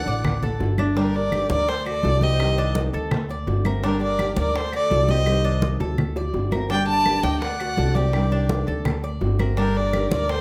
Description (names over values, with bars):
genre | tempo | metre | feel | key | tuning
latin, Cuban son and guajira | 167 BPM | 4/4 | straight | G minor | A4 = 440 Hz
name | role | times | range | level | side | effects
warm violin | melody | 0.0-10.4 s | Bb4 to A5 | -26 LUFS | equal | slapback echo
warm studio violin section | second line | 0.0-10.4 s | G4 to Eb5 | -38 LUFS | equal | none
nylon-string guitar | accompaniment | 0.0-10.3 s | C3 to G4 | -30 LUFS | equal | none
Cuban tres | arpeggios | 0.0-10.4 s | D4 to D5 | -34 LUFS | equal | none
upright bass | bass | 0.1-10.4 s | G1 to D2 | -27 LUFS | equal | none
congas | percussion | 0.1-10.4 s | none | -31 LUFS | equal | none
bongos | percussion | 0.2-10.4 s | none | -35 LUFS | equal | none
claves | percussion | 0.2-10.1 s | none | -40 LUFS | equal | none
room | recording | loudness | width
moderate large studio reverb, RT60 0.9 s | none | -22 LUFS | mono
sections
1.0-10.4 A section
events
drum fill 5.3-6.7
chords
0.0 D; 1.0 Gm; 1.7 D7; 2.4 Cmadd9; 3.1 D7; 3.8 Gm; 4.5 D7; 5.3 Cmadd9; 6.0 D7; 6.7 Gm; 7.4 D7; 8.1 Cmadd9; 8.9 D7; 9.6 Gm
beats
0.25 0.60 | 0.96 1.32 1.68 2.04 | 2.40 2.75 3.11 3.47 | 3.83 4.19 4.55 4.91 | 5.26 5.62 5.98 6.34 | 6.70 7.06 7.42 7.78 | 8.13 8.49 8.85 9.21 | 9.57 9.93 10.29